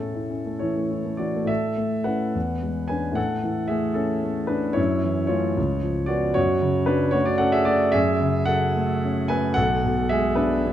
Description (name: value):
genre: classical, romantic character piece for solo piano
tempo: 65-77 BPM (dotted quarters)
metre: 6/8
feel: rubato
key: A major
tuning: A4 = 441 Hz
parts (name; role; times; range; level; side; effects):
- warm concert grand piano; solo; 0.0-10.7 s; B1 to G#5; -21 LUFS; equal; none
room: moderate concert hall reverb, RT60 2.3 s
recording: close, detailed microphones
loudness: -21 LUFS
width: side -11 dB against mid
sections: 0.0-1.5 A section; 1.5-10.7 B section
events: none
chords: 0.0 A; 2.3 E13; 3.2 A; 4.8 F#m7; 5.6 C#7; 6.4 F#m; 9.6 G#dim/B